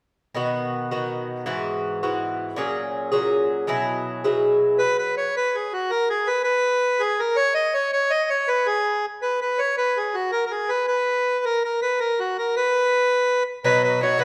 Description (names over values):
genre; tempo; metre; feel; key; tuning
celtic folk; 108 BPM (dotted quarters); 6/8; straight; B major; A4 = 440 Hz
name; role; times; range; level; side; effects
Irish bouzouki; accompaniment; 0.3-5.3, 13.6-14.2 s; G#2 to G#4; -24 LUFS; equal; none
accordion; melody; 4.8-14.2 s; F#4 to D#5; -22 LUFS; equal; none
room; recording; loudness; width
moderate recital hall reverb, RT60 1.5 s; none; -23 LUFS; mono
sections
0.4-4.8 A section; 4.8-13.6 B section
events
none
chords
0.4 B; 1.5 Eadd9; 2.6 F#add9; 3.7 Eadd9; 4.8 N.C.; 13.6 B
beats
| 0.35 0.91 | 1.46 2.02 | 2.57 3.13 | 3.68 4.24 | 4.79 5.35 | 5.90 6.46 | 7.01 7.56 | 8.12 8.67 | 9.22 9.78 | 10.33 10.88 | 11.43 11.99 | 12.54 13.09 | 13.64 14.19